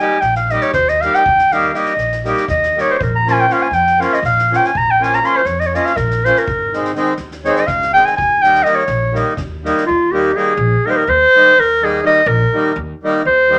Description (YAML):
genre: balkan folk, Balkan wedding band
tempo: 245 BPM (eighths)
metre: 7/8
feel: straight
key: Eb mixolydian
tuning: A4 = 436 Hz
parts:
  - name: warm clarinet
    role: melody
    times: 0.0-13.6 s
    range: F4 to C6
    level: -15 LUFS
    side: equal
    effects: none
  - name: accordion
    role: accompaniment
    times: 0.0-13.6 s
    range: Eb3 to G4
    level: -21 LUFS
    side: equal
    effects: none
  - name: upright bass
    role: bass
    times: 0.2-13.6 s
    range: Ab1 to F2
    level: -25 LUFS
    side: equal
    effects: none
  - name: soft-mallet drum kit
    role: percussion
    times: 0.2-9.8 s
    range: kick drum, snare drum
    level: -33 LUFS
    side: equal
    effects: none
room: moderate small room reverb, RT60 0.6 s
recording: none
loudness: -14 LUFS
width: mono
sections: 0.0-9.9 A section; 9.9-13.6 B section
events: speeding up 0.0-13.6; clarinet solo 0.0-9.9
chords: 0.0 Eb; 3.0 Bbm; 6.5 Ab; 8.2 Eb